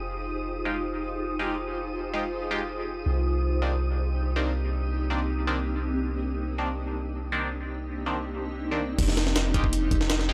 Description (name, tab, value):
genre	drum and bass, jungle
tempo	162 BPM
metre	4/4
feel	straight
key	F dorian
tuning	A4 = 440 Hz
part	granular cloud pad	sustained chords	0.0-10.3 s	Bb3 to C5	-34 LUFS	equal	built-in reverb
part	long sustained 808-style bass	bass	0.0-10.3 s	F1 to C2	-32 LUFS	equal	tube saturation
part	wind-like tuned noise texture	texture	0.0-9.0 s	Eb6	-43 LUFS	equal	built-in reverb
part	band-passed chord stab	stabs	0.7-10.3 s	Eb3 to G4	-35 LUFS	equal	phaser, dub echo
part	jungle sampler-style drum kit	drums	9.0-10.3 s	crash cymbal, hi-hat, kick drum, snare drum	-28 LUFS	equal	none
room	light reverb, digital ambience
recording	dry, gritty hardware recording, transformer saturation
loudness	-28 LUFS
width	mono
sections	0.0-9.0 A section; 9.0-10.3 B section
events	drop 9.0-10.3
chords	0.0 Fm9; 3.1 Cm9; 9.0 Fm9